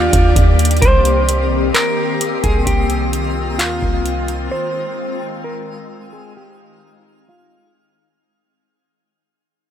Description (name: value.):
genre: hip hop, atmospheric cloud-rap.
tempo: 130 BPM.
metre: 4/4.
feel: half-time.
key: C minor.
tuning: A4 = 444 Hz.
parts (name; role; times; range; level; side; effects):
mellow electric guitar; melody; 0.0-7.7 s; F4 to C5; -20 LUFS; equal; spring reverb, low-pass filter, ping-pong delay.
glassy FM pad; sustained chords; 0.0-8.2 s; Eb3 to D5; -22 LUFS; left 3 dB; ensemble chorus, built-in reverb, sidechain pumping, low-pass filter.
warm 808-style bass; bass; 0.0-4.5 s; C2 to Eb2; -17 LUFS; equal; none.
twinkling granular texture; texture; 0.0-8.2 s; G3 to F6; -30 LUFS; right 1 dB; built-in reverb.
booming analog drum machine; drums; 0.1-4.4 s; handclaps, hi-hat, kick drum; -18 LUFS; equal; none.
room: light reverb.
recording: none.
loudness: -14 LUFS.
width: side -10 dB against mid.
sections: 0.8-8.2 A section.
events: fade-out 0.8-8.2; filter sweep 0.8-8.2.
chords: 0.0 Ebmaj7; 0.8 Cm7; 4.5 Fm7.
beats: 0.36 | 0.82 1.28 1.75 2.21 | 2.67 3.13 3.59 4.05 | 4.52 4.98 5.44 5.90 | 6.36 6.82 7.29 7.75.